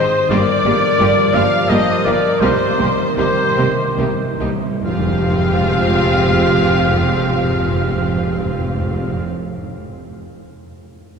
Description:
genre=cinematic, emotional film score for orchestra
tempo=68-89 BPM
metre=3/4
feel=rubato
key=F dorian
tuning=A4 = 439 Hz
part: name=muted studio violin section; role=melody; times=0.0-9.2 s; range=C5 to F5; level=-23 LUFS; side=left 2 dB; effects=none
part: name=dark clarinet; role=second line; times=0.0-9.2 s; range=F4 to D5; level=-24 LUFS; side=equal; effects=none
part: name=mellow concert flute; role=second line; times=0.0-9.2 s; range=C5 to F5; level=-26 LUFS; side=right 1 dB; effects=none
part: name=muted chamber violin section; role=second line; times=0.0-9.2 s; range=Eb4 to G4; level=-27 LUFS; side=left 2 dB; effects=none
part: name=warm oboe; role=second line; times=0.0-9.2 s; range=C5 to F5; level=-24 LUFS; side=right 1 dB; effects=none
part: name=muted studio viola section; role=accompaniment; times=0.0-9.2 s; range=G3 to C4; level=-24 LUFS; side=right 1 dB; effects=none
part: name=mellow French horn section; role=sustained chords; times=0.0-9.2 s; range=Eb3 to C5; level=-23 LUFS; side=equal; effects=none
part: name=concert harp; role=arpeggios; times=0.0-9.6 s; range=G2 to G5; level=-26 LUFS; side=left 3 dB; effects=none
part: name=muted studio cello section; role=bass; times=0.0-9.2 s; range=F2 to C3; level=-24 LUFS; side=right 2 dB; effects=none
part: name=muted studio double bass section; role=bass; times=0.0-9.2 s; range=F1 to C2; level=-23 LUFS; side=right 2 dB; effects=none
part: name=timpani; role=percussion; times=2.4-9.2 s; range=F2 to C3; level=-24 LUFS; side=equal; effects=none
part: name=tam-tam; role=percussion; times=4.8-8.3 s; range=none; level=barely audible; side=none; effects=none
room=wet cathedral reverb, RT60 4.7 s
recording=recorded in a church or concert hall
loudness=-14 LUFS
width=side -6 dB against mid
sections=0.0-4.8 A section; 4.8-10.1 B section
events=slowing down 0.0-4.8; timpani fill 2.4-4.8; band accent 4.8-5.7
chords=0.3 Gm7; 2.4 Cm7; 4.8 Fmadd9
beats=| 0.30 0.99 1.70 | 2.42 3.18 3.99 | 4.85 5.71 6.58 | 7.45 8.31 9.20

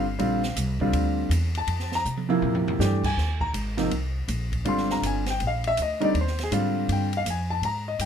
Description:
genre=modal jazz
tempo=161 BPM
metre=4/4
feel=swing 64% on 8ths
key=Bb lydian, Ab lydian from 3.2 s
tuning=A4 = 440 Hz
part: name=warm concert grand piano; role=accompaniment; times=0.0-8.1 s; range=C3 to C6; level=-25 LUFS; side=equal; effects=none
part: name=upright bass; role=bass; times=0.0-8.1 s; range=G1 to C3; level=-27 LUFS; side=equal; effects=none
part: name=open jazz drum kit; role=drums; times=0.2-8.1 s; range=crash cymbal, hi-hat, kick drum, ride cymbal, snare drum, toms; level=-32 LUFS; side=right 2 dB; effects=none
room=light reverb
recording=close, detailed microphones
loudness=-23 LUFS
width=side -8 dB against mid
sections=0.0-3.2 A section; 3.2-8.1 A section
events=drum fill 2.0-2.8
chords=0.0 Bb6; 3.2 Abmaj13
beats=| 0.18 0.56 0.93 1.30 | 1.67 2.05 2.42 2.79 | 3.16 3.53 3.91 4.28 | 4.65 5.02 5.39 5.76 | 6.14 6.51 6.88 7.25 | 7.62 7.99

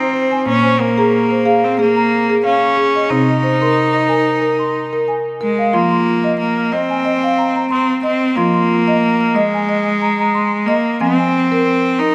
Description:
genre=world meditative, meditative tuned percussion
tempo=91 BPM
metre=4/4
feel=swing 54% on 16ths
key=F minor pentatonic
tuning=A4 = 439 Hz
part: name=bright cello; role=melody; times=0.0-12.1 s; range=Ab3 to Eb4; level=-18 LUFS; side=equal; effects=diffuse ambient delay
part: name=marimba with medium mallets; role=arpeggios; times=0.0-12.1 s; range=Bb2 to F6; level=-19 LUFS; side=equal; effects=none
room=wet concert hall reverb, RT60 2.3 s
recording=none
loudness=-15 LUFS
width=mono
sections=0.0-5.7 A section; 5.7-12.1 B section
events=none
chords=0.5 Bbm; 3.1 Cm; 5.7 Fm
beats=| 0.47 1.13 1.78 2.44 | 3.10 3.76 4.42 5.08 | 5.74 6.40 7.06 7.72 | 8.38 9.04 9.70 10.35 | 11.01 11.67

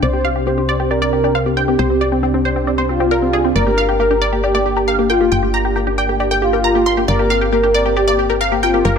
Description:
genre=trance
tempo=136 BPM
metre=4/4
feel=straight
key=unclear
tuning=A4 = 440 Hz
part: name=wide unison pluck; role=melody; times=0.0-9.0 s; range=C4 to C6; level=-18 LUFS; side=right 1 dB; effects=phaser, ping-pong delay
part: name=warm velvety synth lead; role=second line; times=0.0-9.0 s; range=F4 to C5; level=-18 LUFS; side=equal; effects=chorus, digital delay
part: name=lush unison pad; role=sustained chords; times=0.0-9.0 s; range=C3 to G4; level=-23 LUFS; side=right 1 dB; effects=chorus
part: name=tight sequenced synth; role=arpeggios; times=0.0-9.0 s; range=Bb3 to C6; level=-23 LUFS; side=left 7 dB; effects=chorus, digital delay
part: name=tight sequencer bass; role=bass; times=0.0-9.0 s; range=G1 to C2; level=-21 LUFS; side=equal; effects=none
room=light reverb, digital ambience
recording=none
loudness=-13 LUFS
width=side -6 dB against mid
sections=0.0-9.0 A section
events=filter sweep on synth pluck 0.0-9.0; filter sweep on synth arpeggio sound 0.0-9.0; filter sweep on analog synth pad 0.0-9.0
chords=0.0 Csus2; 3.6 Gm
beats=| 0.03 0.47 0.91 1.35 | 1.79 2.23 2.67 3.11 | 3.56 4.00 4.44 4.88 | 5.32 5.76 6.20 6.64 | 7.08 7.53 7.97 8.41 | 8.85

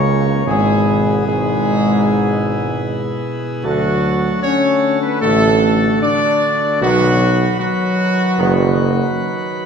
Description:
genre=classical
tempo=76 BPM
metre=4/4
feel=straight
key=unclear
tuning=A4 = 440 Hz
part: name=dark trumpet section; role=melody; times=0.0-9.5 s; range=F#4 to D5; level=-19 LUFS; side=equal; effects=none
part: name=dark French horn section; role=sustained chords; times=0.0-9.5 s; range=F#3 to D4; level=-20 LUFS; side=left 2 dB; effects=none
part: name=mellow trombone section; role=sustained chords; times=0.0-8.7 s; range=G#2 to B3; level=-24 LUFS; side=right 4 dB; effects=none
part: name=pipe organ, principal chorus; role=sustained chords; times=0.0-9.7 s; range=B2 to C#5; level=-21 LUFS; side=left 1 dB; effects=none
part: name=warm tuba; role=bass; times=0.0-9.0 s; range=F#1 to D2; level=-19 LUFS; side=right 2 dB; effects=none
room=wet concert hall reverb, RT60 2.0 s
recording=minimal, uncompressed stereo recording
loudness=-13 LUFS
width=side -6 dB against mid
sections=0.0-9.7 A section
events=none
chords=0.5 E/G#; 3.6 D; 6.8 B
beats=| 0.48 1.27 2.06 2.85 | 3.64 4.43 5.22 6.02 | 6.82 7.60 8.39 9.16

